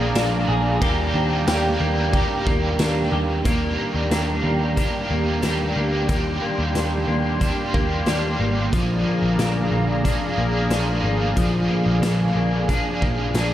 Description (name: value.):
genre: dream pop.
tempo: 91 BPM.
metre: 4/4.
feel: straight.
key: Eb major.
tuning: A4 = 440 Hz.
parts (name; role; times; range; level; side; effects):
cranked stack guitar; accompaniment; 0.0-13.5 s; Bb2 to Ab4; -26 LUFS; right 2 dB; overdrive, harmonic tremolo, analog chorus, tape echo.
warm analog pad; sustained chords; 0.0-13.5 s; G4 to C6; -27 LUFS; equal; chorus.
semi-hollow electric guitar; arpeggios; 0.0-13.5 s; F3 to Ab4; -25 LUFS; left 2 dB; wide subtle chorus, tape echo.
vintage muted picked electric bass; bass; 0.0-13.5 s; Ab1 to Eb2; -24 LUFS; equal; none.
large celesta; texture; 0.0-3.9 s; Bb4 to Bb5; -34 LUFS; right 2 dB; none.
raw garage drum kit; drums; 0.2-13.5 s; hi-hat, kick drum, ride cymbal, snare drum, tambourine; -26 LUFS; equal; none.
room: light reverb, small room ambience.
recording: echo-heavy mix.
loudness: -19 LUFS.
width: side -12 dB against mid.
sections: 0.0-3.5 A section; 3.5-13.5 B section.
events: none.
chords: 0.0 Bb7; 0.8 Ebmaj7; 8.7 Bb7.